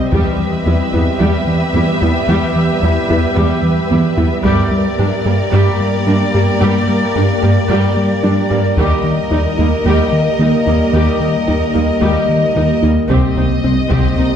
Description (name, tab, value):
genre	cinematic, hybrid orchestral and electronic film score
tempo	111 BPM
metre	4/4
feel	straight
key	unclear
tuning	A4 = 441 Hz
part	rich symphonic violin section	second line	0.0-12.9 s	Bb4 to E5	-20 LUFS	left 1 dB	none
part	deep dark ambient pad	sustained chords	0.0-14.4 s	G3 to E5	-19 LUFS	equal	chorus, built-in reverb
part	rich symphonic viola section	accompaniment	0.1-14.3 s	G3 to G4	-21 LUFS	right 1 dB	none
part	glassy wavetable pluck	arpeggios	0.1-14.3 s	C3 to G4	-22 LUFS	left 1 dB	chorus, digital delay
part	round analog bass	riff	0.1-14.3 s	C2 to G3	-17 LUFS	left 1 dB	none
part	rich symphonic cello section	bass	0.1-14.3 s	C2 to G2	-20 LUFS	right 2 dB	none
part	solo taiko drums	drums	0.1-1.2, 4.4-5.5, 8.8-9.8, 13.1-14.4 s	none	-21 LUFS	equal	none
part	rich studio violin section	melody	13.1-14.4 s	Eb5	-25 LUFS	left 4 dB	none
part	rich symphonic double bass section	bass	13.1-14.3 s	C2	-20 LUFS	right 2 dB	none
room	wet recital hall reverb, RT60 1.4 s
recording	heard from further back in the room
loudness	-12 LUFS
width	side -8 dB against mid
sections	0.0-13.1 A section; 13.1-14.4 B section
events	none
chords	0.1 Em; 4.4 Gm; 8.8 Eb; 13.1 Cm